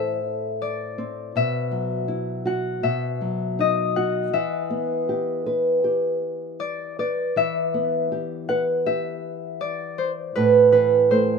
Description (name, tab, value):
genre	children's music, lullaby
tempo	80 BPM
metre	4/4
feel	rubato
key	E minor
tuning	A4 = 439 Hz
part	concert harp	melody	0.0-11.4 s	B4 to F#5	-22 LUFS	right 1 dB	none
part	nylon-string guitar	accompaniment	0.0-11.4 s	A2 to B4	-25 LUFS	equal	none
room	light reverb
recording	minimal, uncompressed stereo recording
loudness	-21 LUFS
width	side -5 dB against mid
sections	0.0-7.4 A section; 7.4-11.4 A section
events	none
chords	0.0 Am; 1.4 Bsus4; 2.8 B; 4.3 Em; 10.4 Am